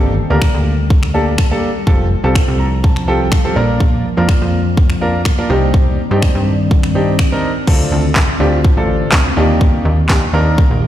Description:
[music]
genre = dance-pop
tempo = 124 BPM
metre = 4/4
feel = straight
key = unclear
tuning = A4 = 442 Hz
[part]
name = clear grand piano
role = accompaniment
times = 0.0-10.8 s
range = Bb3 to Bb5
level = -18 LUFS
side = right 1 dB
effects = sidechain pumping
[part]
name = glassy FM pad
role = sustained chords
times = 0.0-10.9 s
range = D3 to D5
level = -22 LUFS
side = left 1 dB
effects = ensemble chorus, built-in reverb, phaser, sidechain pumping
[part]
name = plucky analog bass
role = bass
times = 0.0-10.9 s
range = F1 to G2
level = -16 LUFS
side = equal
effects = sidechain pumping
[part]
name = house drum kit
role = drums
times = 0.4-10.7 s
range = crash cymbal, finger snaps, handclaps, kick drum, snare drum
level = -14 LUFS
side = equal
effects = none
[sound]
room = light reverb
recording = played on a big sound system in a bare room, stone room reverb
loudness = -11 LUFS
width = side -12 dB against mid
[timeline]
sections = 0.0-7.7 A section; 7.7-10.9 B section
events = grand piano fill 2.4-3.8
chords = 0.0 Gmadd9; 1.9 Fadd9; 3.6 Bb; 5.5 Cmadd9; 7.7 Dm7; 9.4 Ebmaj7

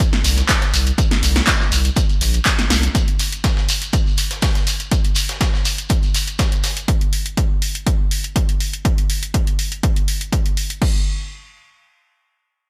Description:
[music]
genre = acid house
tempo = 122 BPM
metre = 4/4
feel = straight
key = unclear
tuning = A4 = 440 Hz
[part]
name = breakbeat sampler-style drum kit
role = drums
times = 0.0-6.8 s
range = hi-hat, snare drum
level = -31 LUFS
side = equal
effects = high-pass filter on hats, high-pass filter on snare, high-pass filter on room, gated reverb
[part]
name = electronic kick drum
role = drums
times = 0.0-10.9 s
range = none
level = -21 LUFS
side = equal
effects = overdrive
[part]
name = punchy analog drum machine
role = drums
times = 0.0-10.9 s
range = crash cymbal, handclaps, hi-hat, snare drum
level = -24 LUFS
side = equal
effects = overdrive, gated reverb
[part]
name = shekere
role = percussion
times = 0.0-6.9 s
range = none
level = -28 LUFS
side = equal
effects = none
[part]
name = round analog bass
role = bass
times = 0.2-2.9 s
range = Bb1 to C2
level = -20 LUFS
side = equal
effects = sidechain pumping
[sound]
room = little or no reverb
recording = bright 1980s-style digital production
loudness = -18 LUFS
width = mono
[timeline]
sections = 0.0-10.8 A section; 10.8-12.7 B section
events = none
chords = none

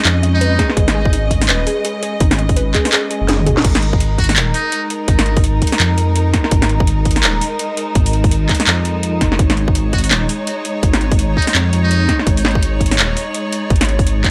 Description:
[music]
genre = half-time drum and bass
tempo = 167 BPM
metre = 4/4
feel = swing 59% on 16ths, half-time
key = unclear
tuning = A4 = 440 Hz
[part]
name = trumpet with metal mute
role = melody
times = 0.0-0.7, 4.2-4.8, 9.9-12.2 s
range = D#4 to F#4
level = -27 LUFS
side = equal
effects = vintage 12-bit sampler grit, tape echo
[part]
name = rich symphonic string section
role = sustained chords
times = 0.0-14.3 s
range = G#3 to D#5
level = -25 LUFS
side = equal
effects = vintage 12-bit sampler grit, sidechain pumping
[part]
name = warbly dusty pluck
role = arpeggios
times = 0.0-3.6 s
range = D#4 to D#5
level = -26 LUFS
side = equal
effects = chorus, analog delay
[part]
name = dark detuned saw bass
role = bass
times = 0.1-14.2 s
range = D#1 to E#2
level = -19 LUFS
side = equal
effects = tube saturation
[part]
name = drum and bass drum kit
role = drums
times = 0.1-14.3 s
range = crash cymbal, handclaps, hi-hat, snare drum, toms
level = -20 LUFS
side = equal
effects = none
[part]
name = electronic kick drum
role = drums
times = 0.6-14.3 s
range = none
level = -18 LUFS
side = equal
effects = none
[part]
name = metallic inharmonic drone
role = texture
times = 4.5-14.3 s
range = D#4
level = -29 LUFS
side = equal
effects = chorus, built-in reverb, phaser
[sound]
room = light reverb, digital ambience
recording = echo-heavy mix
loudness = -15 LUFS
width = mono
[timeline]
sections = 0.0-3.6 A section; 3.6-14.3 A section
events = drop 0.0-3.6, 3.6-14.3; drum fill 3.3-3.6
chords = 0.0 G#m; 3.6 G#5

